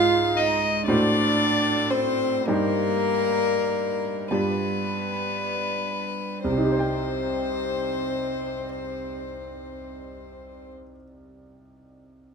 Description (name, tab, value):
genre	classical, slow romantic movement for piano trio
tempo	26-42 BPM (dotted quarters)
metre	6/8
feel	rubato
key	C minor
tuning	A4 = 441 Hz
part	warm violin	melody	0.0-10.7 s	Bb4 to F5	-26 LUFS	left 8 dB	none
part	warm cello	second line	0.0-10.7 s	Bb3 to F4	-28 LUFS	right 6 dB	none
part	warm grand piano	accompaniment	0.0-12.3 s	C2 to G5	-26 LUFS	right 2 dB	none
room	moderate large studio reverb, RT60 1.4 s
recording	minimal, uncompressed stereo recording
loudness	-22 LUFS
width	side -5 dB against mid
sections	0.0-6.4 A section; 6.4-10.7 B section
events	slowing down 0.0-6.4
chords	0.0 Ab; 0.9 D7/A; 2.5 Cm/G; 4.3 G7; 6.4 Cm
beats	0.87 | 2.48 4.30 | 6.44 8.59